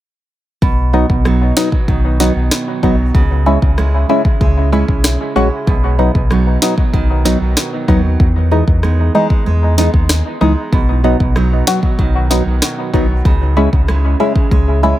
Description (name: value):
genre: dancehall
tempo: 95 BPM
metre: 4/4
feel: straight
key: B major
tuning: A4 = 443 Hz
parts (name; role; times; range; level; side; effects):
- nylon-string guitar; arpeggios; 0.6-15.0 s; B2 to E4; -20 LUFS; right 4 dB; dub echo
- sub bass with octave; bass; 0.6-14.9 s; A#1 to E2; -14 LUFS; equal; none
- afro-pop drum kit; drums; 0.6-14.7 s; kick drum, rim click, snare drum; -14 LUFS; equal; none
- percussive organ stab; accompaniment; 0.9-15.0 s; E3 to F#4; -17 LUFS; left 1 dB; chorus, phaser, sidechain pumping, dub echo
room: light reverb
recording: echo-heavy mix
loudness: -11 LUFS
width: side -14 dB against mid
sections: 0.6-15.0 A section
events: none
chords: 0.6 B; 3.1 C#m; 5.7 B; 8.2 Emaj7; 10.7 B; 13.3 C#m